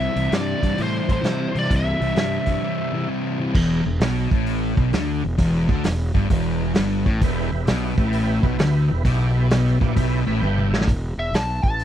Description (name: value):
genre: blues rock power trio and southern rock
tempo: 131 BPM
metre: 4/4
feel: swing 66% on 8ths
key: E minor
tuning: A4 = 440 Hz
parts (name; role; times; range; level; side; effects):
- biting lead guitar; melody; 0.0-3.1, 11.2-11.8 s; C5 to A5; -26 LUFS; equal; wah, overdrive
- fuzz guitar; riff; 0.0-10.9 s; E2 to E4; -22 LUFS; left 1 dB; distortion
- fuzz fingered electric bass; bass; 0.0-11.8 s; E1 to C3; -25 LUFS; equal; overdrive
- vintage drum kit; drums; 0.2-11.8 s; crash cymbal, hi-hat, kick drum, snare drum, toms; -22 LUFS; equal; none
- tonewheel organ; sustained chords; 7.2-10.9 s; B3 to B5; -30 LUFS; right 7 dB; slow rotary speaker, chorus vibrato
room: little or no reverb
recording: dry, close 1970s-style studio recording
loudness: -18 LUFS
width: side -11 dB against mid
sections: 0.0-3.5 A section; 3.5-10.9 B section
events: break 2.6-3.5; tonewheel organ fill 10.0-10.9; drum fill 10.4-10.9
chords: 0.0 C; 3.5 Em; 10.9 E5